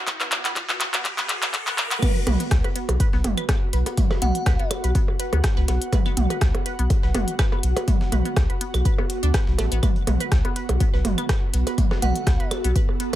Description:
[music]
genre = minimal techno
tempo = 123 BPM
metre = 4/4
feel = swing 54% on 16ths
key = unclear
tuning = A4 = 439 Hz
[part]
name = riser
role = sound effects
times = 0.0-2.0 s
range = none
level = -33 LUFS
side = right 1 dB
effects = none
[part]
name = ethereal airy pad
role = texture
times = 0.0-13.2 s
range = B3 to F#5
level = -32 LUFS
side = equal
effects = ensemble chorus, built-in reverb, sidechain pumping
[part]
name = electronic kick drum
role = drums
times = 0.1-12.9 s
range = none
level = -22 LUFS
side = equal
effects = none
[part]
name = minimal click drum kit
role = drums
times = 0.1-13.2 s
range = crash cymbal, handclaps, hi-hat, rim click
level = -26 LUFS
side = left 1 dB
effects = none
[part]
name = resonant blip pluck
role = riff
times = 0.2-13.2 s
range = A3 to B4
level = -33 LUFS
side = right 1 dB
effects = phaser, sidechain pumping, dub echo
[part]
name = saturated sub bass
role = bass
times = 0.3-13.2 s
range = F#1 to D2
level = -22 LUFS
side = equal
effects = sidechain pumping
[part]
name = breakbeat sampler-style drum kit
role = drums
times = 2.0-13.1 s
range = hi-hat, snare drum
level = -39 LUFS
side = equal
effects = high-pass filter on hats, high-pass filter on snare, high-pass filter on room
[part]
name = electronic toms, percussion blips and claves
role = percussion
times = 2.0-13.2 s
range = none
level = -28 LUFS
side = right 3 dB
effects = overdrive, digital delay
[part]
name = glassy synth bell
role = melody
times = 4.2-4.7, 12.0-12.5 s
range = F#5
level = -30 LUFS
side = right 1 dB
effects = chorus, tremolo, digital delay
[sound]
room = light reverb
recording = high-pass filter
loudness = -19 LUFS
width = side -13 dB against mid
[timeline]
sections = 0.0-2.0 A section; 2.0-13.2 B section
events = build-up 0.0-2.0; drum fill 0.0-2.0; riser 0.0-2.0; drop 2.0-13.2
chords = 0.0 B5

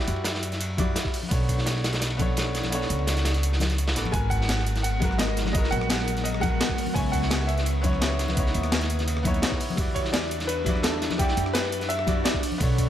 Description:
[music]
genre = liquid drum and bass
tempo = 170 BPM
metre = 4/4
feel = straight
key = unclear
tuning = A4 = 440 Hz
[part]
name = bright grand piano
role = accompaniment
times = 0.0-12.9 s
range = G3 to F#5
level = -32 LUFS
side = equal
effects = ping-pong delay
[part]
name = upright bass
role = bass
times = 0.0-12.9 s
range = G#1 to F#2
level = -27 LUFS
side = equal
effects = none
[part]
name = breakbeat sampler-style drum kit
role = drums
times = 0.1-12.9 s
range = hi-hat, rim click, snare drum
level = -30 LUFS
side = equal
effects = none
[part]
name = crunchy breakbeat drum kit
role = drums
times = 0.1-12.9 s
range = hi-hat, ride cymbal, snare drum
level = -31 LUFS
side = equal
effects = high-pass filter on cymbals, high-pass filter on hats, high-pass filter on snare, high-pass filter on room
[part]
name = electronic kick drum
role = drums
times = 0.8-12.9 s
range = none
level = -27 LUFS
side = equal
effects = none
[part]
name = congas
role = percussion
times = 0.8-12.6 s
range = none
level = -34 LUFS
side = left 5 dB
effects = none
[part]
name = bright baby grand piano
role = melody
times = 4.1-12.7 s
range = G4 to G#5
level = -30 LUFS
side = equal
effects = tape echo
[part]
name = glassy FM pad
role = sustained chords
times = 4.5-12.9 s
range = C#3 to D#6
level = -34 LUFS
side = left 2 dB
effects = ensemble chorus, built-in reverb, sidechain pumping
[sound]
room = light reverb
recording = none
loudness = -22 LUFS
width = side -11 dB against mid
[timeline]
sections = 0.0-12.9 A section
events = kick drops out 2.7-4.1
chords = 0.0 Em9; 1.1 Bm9; 4.1 G#m9; 7.0 C#m9; 9.8 Em9

